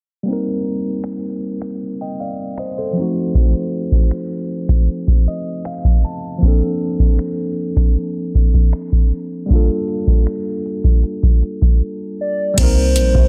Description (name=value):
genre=contemporary R&B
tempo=78 BPM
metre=4/4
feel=straight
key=C dorian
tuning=A4 = 440 Hz
part: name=mellow tine electric piano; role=accompaniment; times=0.2-13.3 s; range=F3 to A5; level=-24 LUFS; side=equal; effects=overdrive
part: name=booming analog drum machine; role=drums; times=1.0-13.3 s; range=crash cymbal, finger snaps, hi-hat, kick drum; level=-15 LUFS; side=equal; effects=soft clipping on snare
part: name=hollow clarinet-like synth lead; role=melody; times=12.2-13.3 s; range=C5 to D5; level=-21 LUFS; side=equal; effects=chorus, tape echo
part: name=warm 808-style bass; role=bass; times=12.6-13.3 s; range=Bb1 to C2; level=-18 LUFS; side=equal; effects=none
room=little or no reverb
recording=dense, heavily limited modern master, low-pass filter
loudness=-18 LUFS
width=mono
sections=0.3-12.6 A section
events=filter sweep 0.3-12.6; tine electric piano fill 4.9-6.4; break 11.8-12.6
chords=0.3 Cm7; 3.0 F7b9; 6.4 Bbmaj9; 9.5 Gm9; 12.6 Cm7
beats=| 0.27 1.04 1.81 2.58 | 3.35 4.12 4.88 5.65 | 6.42 7.19 7.96 8.73 | 9.50 10.27 11.04 11.81 | 12.58